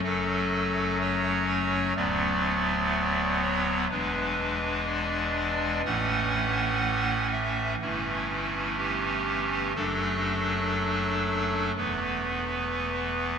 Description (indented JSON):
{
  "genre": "classical, chorale-style piece for pipe organ",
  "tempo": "62 BPM",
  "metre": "4/4",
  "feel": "straight",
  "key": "A major",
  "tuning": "A4 = 440 Hz",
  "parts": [
    { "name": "pipe organ, clarinet reed", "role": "solo", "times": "0.0-13.4 s", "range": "D1 to F#5", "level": "-25 LUFS", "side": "equal", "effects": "none" }
  ],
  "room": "wet church reverb, RT60 3.6 s",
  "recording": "minimal, uncompressed stereo recording",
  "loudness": "-25 LUFS",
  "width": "side -6 dB against mid",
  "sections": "0.0-13.4 A section",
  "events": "none",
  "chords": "0.0 F#m; 2.0 Bm7/D; 3.9 E7; 5.9 A; 7.8 A7/G; 9.8 D/F#; 11.8 Esus4"
}